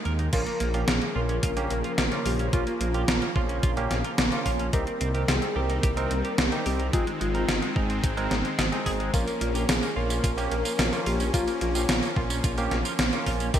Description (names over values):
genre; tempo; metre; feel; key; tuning
synthwave; 109 BPM; 4/4; straight; Bb dorian; A4 = 440 Hz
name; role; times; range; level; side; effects
soft supersaw; sustained chords; 0.0-13.6 s; Db3 to Db4; -33 LUFS; equal; phaser, sidechain pumping
clean electric guitar; riff; 0.1-13.6 s; Ab3 to C5; -36 LUFS; right 3 dB; analog chorus, ping-pong delay
dark detuned saw bass; bass; 0.1-13.6 s; Ab1 to Eb2; -29 LUFS; equal; sidechain pumping
gated 80s digital drum machine; drums; 0.1-13.6 s; crash cymbal, hi-hat, snare drum, tambourine; -28 LUFS; equal; gated reverb, gated reverb snare, overdrive
soft octave-layered synth lead; melody; 0.3-13.6 s; F4 to Bb4; -32 LUFS; left 2 dB; chorus, tremolo, digital delay
barky tine electric piano; stabs; 0.3-13.6 s; Bb3 to Bb4; -33 LUFS; right 3 dB; medium stereo tremolo, digital delay
electronic kick drum; drums; 0.3-13.6 s; none; -27 LUFS; equal; overdrive
room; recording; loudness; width
moderate lush hall reverb, RT60 2.0 s, digital ambience; bright 1980s-style digital production; -23 LUFS; side -10 dB against mid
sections
0.3-13.6 A section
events
break 0.0-0.3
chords
0.3 Bbm; 4.7 Cm; 6.9 Ab; 9.1 Bbm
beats
| 0.33 0.88 1.43 1.98 | 2.53 3.08 3.63 4.18 | 4.73 5.28 5.83 6.38 | 6.93 7.49 8.04 8.59 | 9.14 9.69 10.24 10.79 | 11.34 11.89 12.44 12.99 | 13.54